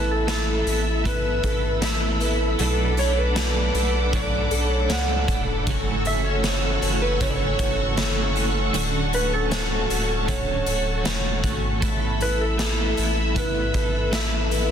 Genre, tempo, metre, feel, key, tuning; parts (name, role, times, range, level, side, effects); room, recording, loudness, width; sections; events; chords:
dream pop; 78 BPM; 4/4; straight; A major; A4 = 437 Hz
clean lap steel guitar; melody; 0.0-14.7 s; A4 to F#5; -28 LUFS; right 2 dB; ping-pong delay
twelve-string electric guitar; accompaniment; 0.0-14.7 s; F#2 to A4; -30 LUFS; right 6 dB; tremolo, ensemble chorus
string machine, violas; sustained chords; 0.0-14.7 s; A4 to E6; -28 LUFS; left 1 dB; ensemble chorus
picked twelve-string acoustic guitar; arpeggios; 0.0-14.7 s; F#2 to A4; -30 LUFS; left 2 dB; wide subtle chorus, ping-pong delay
saturated sub bass; bass; 0.0-14.7 s; D1 to C#2; -26 LUFS; equal
raw garage drum kit; drums; 0.3-14.7 s; hi-hat, kick drum, snare drum; -27 LUFS; equal
light reverb, small room ambience; dense, heavily limited modern master; -20 LUFS; side -8 dB against mid
0.0-14.7 A section
0.0 Asus2; 2.6 Bm7; 5.7 F#m7; 8.7 Dmaj7; 11.8 Asus2